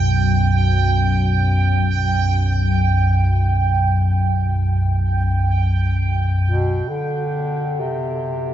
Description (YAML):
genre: dark ambient drone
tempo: free time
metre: none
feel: none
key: unclear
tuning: A4 = 440 Hz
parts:
  - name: deep rumbling drone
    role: drone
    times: 0.0-8.5 s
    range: B1 to F#2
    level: -17 LUFS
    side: equal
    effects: built-in reverb, phaser
  - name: bubbling stepped-filter texture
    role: texture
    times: 0.0-6.9 s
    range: G5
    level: -24 LUFS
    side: right 6 dB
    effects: chorus, built-in reverb
  - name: warm bass clarinet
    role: melody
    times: 6.4-8.5 s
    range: B2 to D3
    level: -22 LUFS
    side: left 1 dB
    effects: tape echo
  - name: dark analog pad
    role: sustained chords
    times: 7.1-8.5 s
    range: B3 to F#4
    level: -40 LUFS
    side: right 1 dB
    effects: chorus
room: moderate huge ambient reverb, RT60 8.5 s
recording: dark, warm production, nothing above 7.6 kHz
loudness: -16 LUFS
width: side -11 dB against mid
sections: 0.0-6.9 A section; 6.9-8.5 B section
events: none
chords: 0.0 G/B